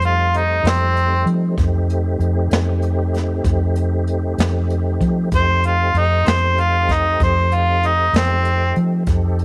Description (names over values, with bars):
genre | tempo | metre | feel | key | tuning
slow blues | 64 BPM (dotted quarters) | 12/8 | straight | F mixolydian | A4 = 441 Hz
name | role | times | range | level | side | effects
mellow harmonica | melody | 0.0-8.8 s | C4 to C5 | -20 LUFS | equal | overdrive
tonewheel organ | sustained chords | 0.0-9.4 s | G3 to A4 | -28 LUFS | equal | slow rotary speaker, chorus vibrato
vintage muted fingered electric bass | bass | 0.0-9.4 s | F2 to F3 | -20 LUFS | equal | none
jazz brush drum kit | drums | 0.0-9.4 s | hi-hat, kick drum, snare drum | -24 LUFS | equal | none
room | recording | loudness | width
studio reverb | none | -18 LUFS | mono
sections
0.0-9.4 A section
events
harmonica solo 0.0-9.4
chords
0.0 F9